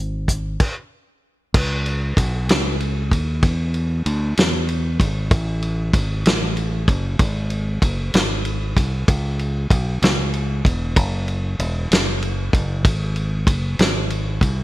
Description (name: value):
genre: slow gospel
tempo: 64 BPM (dotted quarters)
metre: 6/8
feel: straight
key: unclear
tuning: A4 = 440 Hz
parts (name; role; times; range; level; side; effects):
- fingered electric bass; bass; 0.0-14.6 s; E1 to E2; -22 LUFS; equal; none
- warm soul drum kit; drums; 0.3-14.6 s; crash cymbal, hi-hat, kick drum, ride cymbal, snare drum; -20 LUFS; equal; gated reverb
room: little or no reverb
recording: bright 1980s-style digital production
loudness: -18 LUFS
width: side -17 dB against mid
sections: 0.0-1.5 A section; 1.5-14.6 B section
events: stop 0.6-1.5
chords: none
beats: 0.60 | 1.54 2.49 | 3.43 4.37 | 5.31 6.26 | 7.20 8.14 | 9.08 10.02 | 10.96 11.90 | 12.85 13.79